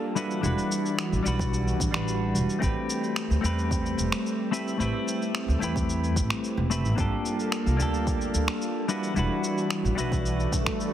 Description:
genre	sunset chillout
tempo	110 BPM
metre	4/4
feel	straight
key	A minor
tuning	A4 = 440 Hz
part	clean electric guitar	accompaniment	0.0-10.9 s	G3 to B4	-29 LUFS	left 1 dB	auto-pan, digital delay
part	airy breathy pad	sustained chords	0.0-10.9 s	E3 to A4	-31 LUFS	right 1 dB	chorus
part	electronic shaker and finger snaps	drums	0.2-10.9 s	none	-33 LUFS	equal	overdrive, small room ambience
part	upright bass	bass	0.4-10.6 s	E1 to E2	-27 LUFS	equal	tube saturation
part	electronic kick drum	drums	1.4-10.8 s	none	-30 LUFS	equal	small room ambience
part	swell	sound effects	10.4-10.9 s	none	-33 LUFS	right 1 dB	none
room	moderate plate reverb, RT60 1.8 s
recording	heavily compressed radio sound, multiband compression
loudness	-24 LUFS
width	side -11 dB against mid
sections	0.0-10.9 A section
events	swell 10.4-10.9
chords	0.2 Em9; 2.6 Am9; 7.0 Gm9; 8.9 Em9

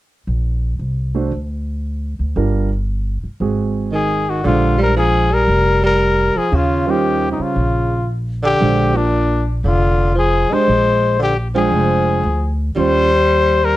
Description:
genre	jazz, small-group swing and bop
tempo	116 BPM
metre	4/4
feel	swing 68% on 8ths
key	Bb mixolydian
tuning	A4 = 439 Hz
part	upright bass	bass	0.3-13.8 s	F1 to Eb2	-19 LUFS	equal	none
part	warm grand piano	accompaniment	1.1-13.1 s	G3 to G5	-21 LUFS	right 6 dB	none
part	clear trumpet	melody	3.9-13.8 s	D4 to C5	-17 LUFS	left 3 dB	slapback echo
part	breathy tenor saxophone	second line	3.9-13.8 s	Bb2 to Ab3	-19 LUFS	right 2 dB	none
room	light reverb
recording	dry, close 1970s-style studio recording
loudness	-14 LUFS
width	side -15 dB against mid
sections	0.3-4.4 A section; 4.4-13.8 B section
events	none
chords	0.3 Bb; 1.3 N.C.; 2.4 Gm7; 3.4 Ab7; 4.4 Bb13; 6.5 Eb13; 8.6 Bb13; 12.8 Eb13

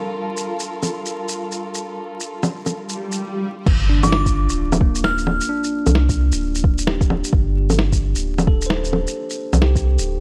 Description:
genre	future garage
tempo	131 BPM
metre	4/4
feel	swing 61% on 16ths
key	G minor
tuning	A4 = 438 Hz
part	bell-like tine electric piano	accompaniment	0.0-10.2 s	Bb3 to C5	-30 LUFS	equal	sidechain pumping, tape echo
part	dark chamber string section	sustained chords	0.0-3.2 s	G3 to Bb4	-31 LUFS	equal	vintage 12-bit sampler grit, sidechain pumping
part	wind-like tuned noise texture	texture	0.0-3.2 s	F4	-37 LUFS	equal	built-in reverb
part	lo-fi sampler-style drum kit	drums	0.4-10.1 s	bongos, crash cymbal, shaker, snare drum	-25 LUFS	equal	overdrive, small room ambience
part	swell and impact	sound effects	2.9-5.5 s	none	-29 LUFS	equal	none
part	warm sub bass	bass	3.7-10.2 s	D1 to C2	-22 LUFS	equal	sidechain pumping
part	electronic kick drum	drums	3.7-9.8 s	none	-20 LUFS	equal	small room ambience
part	glassy synth bell	melody	4.0-5.7 s	D6 to F6	-28 LUFS	equal	chorus, tape echo
room	light reverb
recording	vinyl crackle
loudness	-20 LUFS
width	mono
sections	0.0-3.7 A section; 3.7-10.2 B section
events	swell 2.9-3.7; impact 3.7-5.5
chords	0.0 Gm9

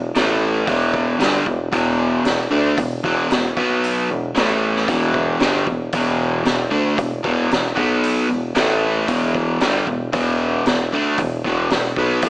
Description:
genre	blues rock power trio and southern rock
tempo	114 BPM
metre	4/4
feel	straight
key	E minor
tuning	A4 = 439 Hz
part	crunchy overdriven guitar	riff	0.0-12.3 s	E2 to D4	-19 LUFS	equal	none
part	warm tuba	bass	0.0-12.3 s	E1 to D2	-22 LUFS	equal	none
part	raw garage drum kit	drums	0.2-12.3 s	hi-hat, kick drum, snare drum	-22 LUFS	equal	none
room	light reverb, studio reverb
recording	small speaker sound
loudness	-16 LUFS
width	side -22 dB against mid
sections	0.0-12.3 A section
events	none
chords	0.2 A5; 0.7 Em; 3.6 B5; 4.1 E5; 4.4 A5; 4.9 Em; 7.8 B5; 8.3 E5; 8.6 A5; 9.1 Em

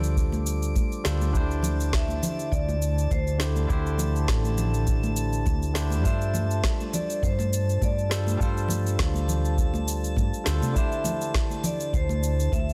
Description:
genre	sunset chillout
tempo	102 BPM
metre	4/4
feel	swing 55% on 16ths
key	D minor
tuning	A4 = 439 Hz
part	barky tine electric piano	accompaniment	0.0-12.7 s	D3 to C5	-35 LUFS	equal	overdrive, digital delay
part	woody fretless electric bass	bass	0.0-12.7 s	A1 to C3	-28 LUFS	equal	none
part	electronic cabasa and snare drum	drums	0.0-12.7 s	none	-36 LUFS	equal	studio reverb
part	drifting glass-harmonics texture	texture	0.0-12.7 s	A5 to D6	-43 LUFS	equal	chorus, built-in reverb
part	electronic kick drum	drums	0.2-12.6 s	none	-29 LUFS	equal	studio reverb
part	congas	percussion	0.3-12.7 s	none	-37 LUFS	equal	none
part	vibraphone with medium mallets	melody	1.9-12.7 s	A4 to F5	-36 LUFS	equal	digital delay
room	light reverb, digital ambience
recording	dense, heavily limited modern master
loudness	-25 LUFS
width	mono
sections	0.0-12.7 A section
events	none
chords	0.0 G9sus4; 1.3 D9sus4; 6.0 G9sus4; 10.8 D9sus4

